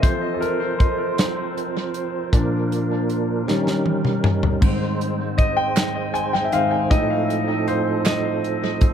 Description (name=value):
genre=slow gospel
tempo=52 BPM (dotted quarters)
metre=6/8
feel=straight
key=unclear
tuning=A4 = 439 Hz
part: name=clear concert grand piano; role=accompaniment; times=0.0-8.9 s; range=Ab2 to Ab5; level=-22 LUFS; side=left 1 dB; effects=tape echo
part: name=tonewheel organ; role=sustained chords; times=0.0-8.9 s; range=A2 to C5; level=-26 LUFS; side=right 5 dB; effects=slow rotary speaker, chorus vibrato
part: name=modern studio drum kit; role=drums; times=0.0-8.9 s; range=hi-hat, kick drum, snare drum, splash cymbal, toms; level=-20 LUFS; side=equal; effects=tape echo
part: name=group handclap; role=percussion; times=5.8-8.4 s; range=none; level=-31 LUFS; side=right 5 dB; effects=none
room=light reverb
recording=echo-heavy mix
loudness=-19 LUFS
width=side -8 dB against mid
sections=0.0-8.9 A section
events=grand piano solo 0.0-8.9; drum fill 3.5-4.6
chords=0.0 F; 2.3 Bb; 3.5 Eb7; 4.6 Ab; 6.9 F7/A